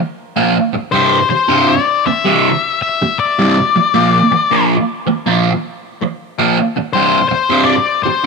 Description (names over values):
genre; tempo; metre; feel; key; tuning
rock; 80 BPM; 4/4; straight; C mixolydian; A4 = 441 Hz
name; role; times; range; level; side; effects
fuzz guitar; riff; 0.0-8.1 s; C2 to Bb3; -14 LUFS; right 2 dB; distortion, phaser
octave-fuzz lead guitar; melody; 0.9-8.3 s; C5 to E5; -14 LUFS; left 7 dB; distortion, slapback echo
room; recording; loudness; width
light reverb; none; -11 LUFS; side -4 dB against mid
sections
0.0-8.3 A section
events
none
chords
0.0 Bb5; 0.6 C; 3.6 Bb; 6.6 C5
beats
| 0.55 1.30 2.05 2.80 | 3.55 4.30 5.05 5.80 | 6.55 7.30 8.05